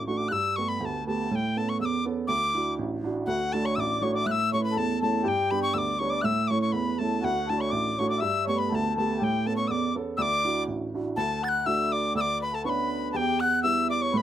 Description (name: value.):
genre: celtic folk.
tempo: 122 BPM.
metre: 2/4.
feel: swing 54% on 8ths.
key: D major.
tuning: A4 = 441 Hz.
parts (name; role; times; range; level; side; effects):
bright mid whistle; melody; 0.0-14.2 s; F#5 to A6; -28 LUFS; left 2 dB; none.
warm upright piano; accompaniment; 0.0-14.2 s; A1 to A4; -28 LUFS; right 4 dB; none.
mellow accordion; second line; 3.3-14.2 s; F#4 to F#5; -31 LUFS; left 4 dB; none.
room: light reverb.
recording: close, detailed microphones.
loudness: -24 LUFS.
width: side -11 dB against mid.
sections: 0.0-3.3 A section; 3.3-11.2 A section; 11.2-14.2 B section.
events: none.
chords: 0.3 Gadd9; 1.3 Aadd9; 2.3 Dadd9; 3.3 D; 4.3 A; 5.2 G; 6.2 A; 7.2 D; 8.2 Gadd9; 9.2 Aadd9; 10.2 Dadd9; 11.2 D; 12.2 Bmadd9/D; 13.1 Em.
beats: | 0.31 0.80 | 1.29 1.79 | 2.28 2.78 | 3.27 3.76 | 4.26 4.75 | 5.24 5.74 | 6.23 6.72 | 7.22 7.71 | 8.21 8.70 | 9.19 9.69 | 10.18 10.67 | 11.17 11.66 | 12.15 12.65 | 13.14 13.63 | 14.13.